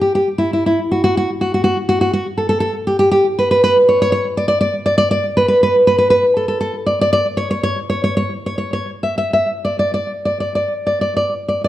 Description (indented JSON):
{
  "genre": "romantic piece for solo classical guitar",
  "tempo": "48-62 BPM",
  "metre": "4/4",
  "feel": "rubato",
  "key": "D major",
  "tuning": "A4 = 440 Hz",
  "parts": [
    { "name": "nylon-string guitar", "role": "solo", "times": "0.0-11.7 s", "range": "E4 to E5", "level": "-14 LUFS", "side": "equal", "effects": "slapback echo" }
  ],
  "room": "moderate recital hall reverb, RT60 1.8 s",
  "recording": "dark, warm production",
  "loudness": "-14 LUFS",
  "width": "side -13 dB against mid",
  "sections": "0.0-11.7 A section",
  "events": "none",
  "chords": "none"
}